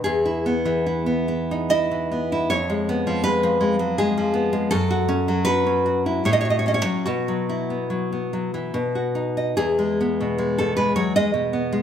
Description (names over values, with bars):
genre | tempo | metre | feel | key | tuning
romantic piece for solo classical guitar | 67-85 BPM | 3/4 | rubato | E major | A4 = 438 Hz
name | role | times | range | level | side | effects
nylon-string guitar | solo | 0.0-11.8 s | E2 to D#5 | -20 LUFS | equal | none
room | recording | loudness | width
moderate recital hall reverb, RT60 1.7 s | none | -20 LUFS | side -9 dB against mid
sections
0.0-11.8 A section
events
none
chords
0.0 E; 2.5 C#7/E#; 4.7 F#m; 6.2 F#m/A; 7.0 Bsus4; 8.7 B; 9.6 E